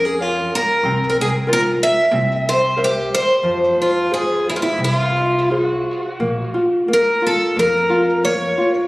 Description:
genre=fado-style ballad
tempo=82-94 BPM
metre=4/4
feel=rubato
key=F harmonic minor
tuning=A4 = 440 Hz
part: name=picked twelve-string acoustic guitar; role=melody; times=0.0-8.7 s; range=E4 to E5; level=-17 LUFS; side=equal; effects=tape echo
part: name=nylon-string guitar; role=accompaniment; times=0.0-8.9 s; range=C3 to F5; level=-21 LUFS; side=equal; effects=none
part: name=upright bass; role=bass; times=0.0-8.4 s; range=Bb1 to F2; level=-25 LUFS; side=equal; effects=none
room=moderate concert hall reverb, RT60 2.2 s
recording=recorded on a phone in the room, club reverb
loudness=-15 LUFS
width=side -20 dB against mid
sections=0.0-6.2 A section; 6.2-8.9 B section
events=none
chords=0.0 Bbm; 0.8 C7sus4; 2.1 C7; 3.4 Fm; 6.2 Bb5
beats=0.18 | 0.83 1.48 2.11 2.77 | 3.43 4.10 4.79 5.50 | 6.21 6.88 7.56 8.24

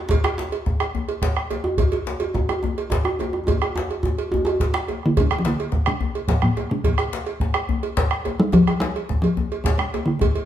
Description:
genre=west african traditional, West African drum ensemble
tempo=142 BPM (dotted quarters)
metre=12/8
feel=straight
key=unclear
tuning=A4 = 440 Hz
part: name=bombo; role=percussion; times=0.1-10.3 s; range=none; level=-24 LUFS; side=right 1 dB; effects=none
part: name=cowbell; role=percussion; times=0.1-10.5 s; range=none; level=-28 LUFS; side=right 6 dB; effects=none
part: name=djembe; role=percussion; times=0.1-10.3 s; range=none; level=-28 LUFS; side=left 4 dB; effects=none
part: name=djembe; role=percussion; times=0.1-4.9 s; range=none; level=-25 LUFS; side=right 2 dB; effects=none
part: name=talking drum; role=melody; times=5.1-10.5 s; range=A2 to G3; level=-20 LUFS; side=left 1 dB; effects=none
room=wet large studio reverb, RT60 1.1 s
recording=band playing live in one room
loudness=-20 LUFS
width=side -11 dB against mid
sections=0.0-5.2 A section; 5.2-10.5 B section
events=drum fill 3.5-5.2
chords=none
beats=| 0.10 0.52 0.95 1.37 | 1.79 2.21 2.64 3.06 | 3.48 3.90 4.32 4.75 | 5.17 5.59 6.01 6.43 | 6.85 7.27 7.69 8.11 | 8.53 8.95 9.37 9.79 | 10.21

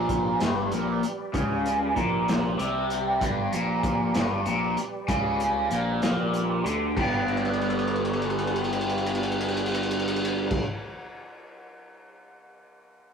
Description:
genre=psychedelic rock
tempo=64 BPM (dotted quarters)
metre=6/8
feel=straight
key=unclear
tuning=A4 = 440 Hz
part: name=tonewheel organ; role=sustained chords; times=0.0-10.6 s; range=G3 to D5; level=-35 LUFS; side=right 3 dB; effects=slow rotary speaker, overdrive, chorus vibrato
part: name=raw garage guitar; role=riff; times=0.0-10.7 s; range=G2 to G4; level=-26 LUFS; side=equal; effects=overdrive, phaser
part: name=fuzz picked electric bass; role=bass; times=0.0-10.6 s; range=G1 to D2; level=-32 LUFS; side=left 1 dB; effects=overdrive
part: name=crunchy breakbeat drum kit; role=drums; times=0.1-10.7 s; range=crash cymbal, hi-hat, kick drum, ride cymbal, snare drum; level=-30 LUFS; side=left 1 dB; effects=none
room=moderate stone room reverb, RT60 1.1 s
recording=rough rehearsal-room recording, warm saturation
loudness=-23 LUFS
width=side -6 dB against mid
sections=0.0-7.0 A section; 7.0-10.7 B section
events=drum fill 7.3-10.5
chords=0.0 G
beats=0.41 | 1.34 2.28 | 3.21 4.15 | 5.09 6.02 | 6.96 7.90 | 8.83 9.77

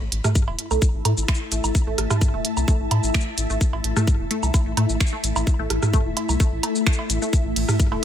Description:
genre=minimal techno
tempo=129 BPM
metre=4/4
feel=straight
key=unclear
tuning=A4 = 439 Hz
part: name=rubbery square bass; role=bass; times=0.0-8.0 s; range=E1 to A2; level=-24 LUFS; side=equal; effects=sidechain pumping
part: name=ethereal airy pad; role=texture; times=0.6-8.0 s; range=A3 to A5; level=-28 LUFS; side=left 3 dB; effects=ensemble chorus, built-in reverb, phaser, sidechain pumping
part: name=flickering grainy texture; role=texture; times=0.5-8.0 s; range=E4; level=-36 LUFS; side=left 1 dB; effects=built-in reverb, sidechain pumping
part: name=minimal click drum kit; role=drums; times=0.1-7.9 s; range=finger snaps, hi-hat, ride cymbal, shaker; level=-27 LUFS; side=right 1 dB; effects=none
part: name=resonant blip pluck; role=riff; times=0.2-8.0 s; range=A3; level=-31 LUFS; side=right 1 dB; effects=phaser, sidechain pumping, ping-pong delay
part: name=booming analog drum machine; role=percussion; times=0.2-8.0 s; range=cowbell, rim click, toms, woodblock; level=-26 LUFS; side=right 2 dB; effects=ping-pong delay
part: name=electronic kick drum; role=drums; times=0.4-7.9 s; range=none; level=-19 LUFS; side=equal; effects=none
room=little or no reverb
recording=none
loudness=-19 LUFS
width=side -10 dB against mid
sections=0.0-8.0 A section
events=none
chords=0.0 A5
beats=0.35 0.82 1.28 | 1.75 2.21 2.68 3.15 | 3.61 4.08 4.54 5.00 | 5.47 5.93 6.40 6.87 | 7.33 7.80

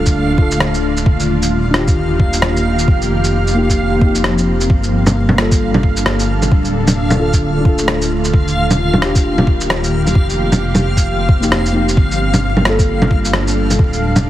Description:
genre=future garage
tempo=132 BPM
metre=4/4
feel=swing 60% on 16ths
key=G minor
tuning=A4 = 437 Hz
part: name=muted felt-like synth keys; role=accompaniment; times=0.0-13.8 s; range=Bb3 to A4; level=-21 LUFS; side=left 2 dB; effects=chorus, sidechain pumping, tape echo
part: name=ethereal airy pad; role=sustained chords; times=0.0-14.3 s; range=D3 to A4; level=-19 LUFS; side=equal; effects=ensemble chorus, built-in reverb, sidechain pumping
part: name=dark detuned saw bass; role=bass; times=0.0-14.3 s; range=D1 to G1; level=-19 LUFS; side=equal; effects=sidechain pumping
part: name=backwards swelling texture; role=texture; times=0.0-14.3 s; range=F5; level=-24 LUFS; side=right 1 dB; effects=built-in reverb
part: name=electronic kick drum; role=drums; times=0.1-13.9 s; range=none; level=-13 LUFS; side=equal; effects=none
part: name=electronic shaker, rim click and bongos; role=drums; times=0.1-14.2 s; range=none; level=-18 LUFS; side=equal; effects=none
room=digital ambience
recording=heavily compressed radio sound, multiband compression, vinyl crackle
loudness=-12 LUFS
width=side -13 dB against mid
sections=0.0-14.3 A section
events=none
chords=0.0 Dm; 1.1 Ebmaj7; 2.9 F7sus4; 4.7 Gm7; 6.5 Dm; 8.3 Ebmaj7; 10.2 F7sus4; 12.0 Gm7; 13.8 Dm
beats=0.15 0.61 | 1.06 1.52 1.97 2.43 | 2.88 3.34 3.79 4.25 | 4.70 5.15 5.61 6.06 | 6.52 6.97 7.43 7.88 | 8.34 8.79 9.24 9.70 | 10.15 10.61 11.06 11.52 | 11.97 12.43 12.88 13.34 | 13.79 14.24

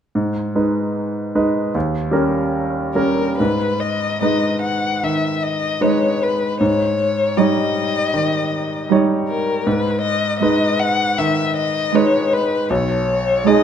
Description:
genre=classical, slow romantic movement for piano trio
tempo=67-81 BPM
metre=4/4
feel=rubato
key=G# minor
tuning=A4 = 440 Hz
part: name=bright grand piano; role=accompaniment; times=0.2-13.6 s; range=B1 to C#5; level=-18 LUFS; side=right 1 dB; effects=none
part: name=rich violin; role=melody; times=2.9-13.6 s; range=A#4 to F#5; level=-20 LUFS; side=left 4 dB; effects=none
part: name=rich cello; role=second line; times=4.2-13.6 s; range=G3 to G#3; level=-22 LUFS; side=right 9 dB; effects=none
room=moderate recital hall reverb, RT60 1.5 s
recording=dark, warm production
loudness=-16 LUFS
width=side -8 dB against mid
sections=0.1-3.4 A section; 3.4-13.6 B section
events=none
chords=0.1 G#m; 1.7 D#7; 3.4 G#m; 6.6 D#7/G#; 9.7 G#m; 12.7 G#m/B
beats=| 0.14 0.96 1.75 2.53 | 3.39 4.22 5.03 5.82 | 6.60 7.38 8.15 8.91 | 9.66 10.41 11.18 11.94 | 12.70 13.45

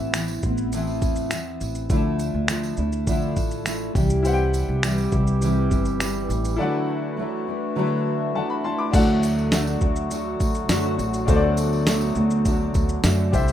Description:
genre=acoustic pop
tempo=102 BPM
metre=4/4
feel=straight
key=unclear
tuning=A4 = 440 Hz
part: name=fingerpicked steel-string acoustic guitar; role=accompaniment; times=0.0-13.5 s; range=A2 to G4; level=-25 LUFS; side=equal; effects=double-tracked left and right
part: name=upright bass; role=bass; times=0.0-13.5 s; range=G1 to F#2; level=-24 LUFS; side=equal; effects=none
part: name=tambourine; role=percussion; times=0.0-13.5 s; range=none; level=-38 LUFS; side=right 6 dB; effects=none
part: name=dusty soul sampler-style drum kit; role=drums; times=0.1-13.5 s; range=crash cymbal, finger snaps, kick drum, shaker, snare drum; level=-24 LUFS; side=equal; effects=none
part: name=bright upright piano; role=accompaniment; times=4.2-13.5 s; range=D4 to D6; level=-28 LUFS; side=left 4 dB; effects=plate reverb
part: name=mellow woodwind section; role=sustained chords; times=4.2-13.5 s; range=D3 to G4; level=-30 LUFS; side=equal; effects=stereo widening
room=light reverb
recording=rough home demo mix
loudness=-20 LUFS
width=side -11 dB against mid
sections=0.0-8.9 A section; 8.9-13.5 B section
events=break 6.6-8.9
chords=0.0 Amadd9; 1.9 Dmadd9; 4.0 C; 6.6 Dadd9; 8.9 D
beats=0.14 0.73 1.31 | 1.90 2.48 3.07 3.66 | 4.25 4.83 5.42 6.00 | 6.59 7.18 7.76 8.35 | 8.94 9.52 10.11 10.70 | 11.28 11.87 12.46 13.04

